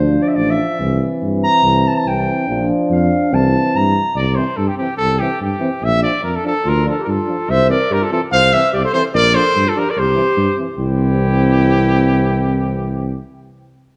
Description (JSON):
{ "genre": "balkan folk", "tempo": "144 BPM", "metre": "2/4", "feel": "straight", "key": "C mixolydian", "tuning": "A4 = 440 Hz", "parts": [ { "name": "dark clarinet", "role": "second line", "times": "0.0-4.2, 6.7-13.2 s", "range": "E4 to Bb5", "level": "-22 LUFS", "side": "equal", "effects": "none" }, { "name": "mellow euphonium", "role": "accompaniment", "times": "0.0-13.2 s", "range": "C4 to D4", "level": "-24 LUFS", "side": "equal", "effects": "none" }, { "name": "warm euphonium", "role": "accompaniment", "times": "0.0-13.2 s", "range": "E3 to F3", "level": "-28 LUFS", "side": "equal", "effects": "none" }, { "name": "mellow tuba", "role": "bass", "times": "0.0-13.2 s", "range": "A1 to G2", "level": "-21 LUFS", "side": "equal", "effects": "none" }, { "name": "warm trumpet", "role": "melody", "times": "4.2-13.2 s", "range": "G4 to F5", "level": "-20 LUFS", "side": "equal", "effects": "none" } ], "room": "moderate scoring stage reverb, RT60 1.8 s", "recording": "none", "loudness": "-16 LUFS", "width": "mono", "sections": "0.0-4.2 A section; 4.2-10.8 B section; 10.8-12.4 C section", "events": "speeding up 0.0-12.4; clarinet solo 0.0-4.2", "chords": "0.0 Dm; 0.8 C; 2.5 Bb; 3.3 C; 5.8 Bb; 6.7 Dm; 7.5 C; 9.1 Bb; 10.0 C" }